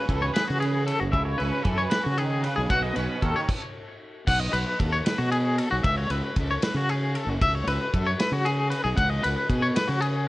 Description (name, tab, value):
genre	math rock and midwest emo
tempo	77 BPM (dotted quarters)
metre	6/8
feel	straight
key	unclear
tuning	A4 = 442 Hz
part	twangy electric guitar	accompaniment	0.0-3.5 s	B2 to G#4	-31 LUFS	right 5 dB	ensemble chorus
part	twangy electric guitar	arpeggios	0.0-10.3 s	F#4 to F#5	-26 LUFS	left 2 dB	tremolo, digital delay
part	fuzz fingered electric bass	bass	0.1-10.3 s	F#1 to C#3	-27 LUFS	equal	overdrive
part	loose indie drum kit	drums	0.1-10.1 s	crash cymbal, kick drum, ride cymbal, snare drum	-29 LUFS	equal	none
room	light reverb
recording	worn, warbling old tape, cassette tape, warbly pitch drift, nothing above 10.4 kHz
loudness	-22 LUFS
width	side -18 dB against mid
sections	0.0-4.3 A section; 4.3-10.3 B section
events	stop 3.5-4.3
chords	0.0 A69/C#; 1.1 C#m7; 2.7 Badd9; 4.3 B7; 5.8 A69/C#; 7.4 C#7(no3); 9.0 F#sus4/C#